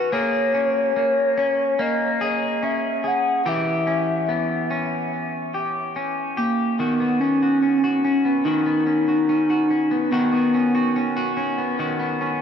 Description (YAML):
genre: dream pop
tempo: 72 BPM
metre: 4/4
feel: straight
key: B major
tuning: A4 = 438 Hz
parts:
  - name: hollow clarinet-like synth lead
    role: melody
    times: 0.0-11.4 s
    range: A#3 to F#5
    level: -21 LUFS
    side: equal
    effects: chorus, ping-pong delay
  - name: electric guitar at the edge of break-up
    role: arpeggios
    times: 0.0-12.4 s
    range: D#3 to G#4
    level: -23 LUFS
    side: left 2 dB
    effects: lush chorus, ping-pong delay
room: moderate huge ambient reverb, RT60 6.6 s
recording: dark, warm production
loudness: -19 LUFS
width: side -8 dB against mid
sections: 0.0-6.8 A section; 6.8-12.4 B section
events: none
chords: 0.1 A#m7; 3.5 Em6; 6.8 Badd9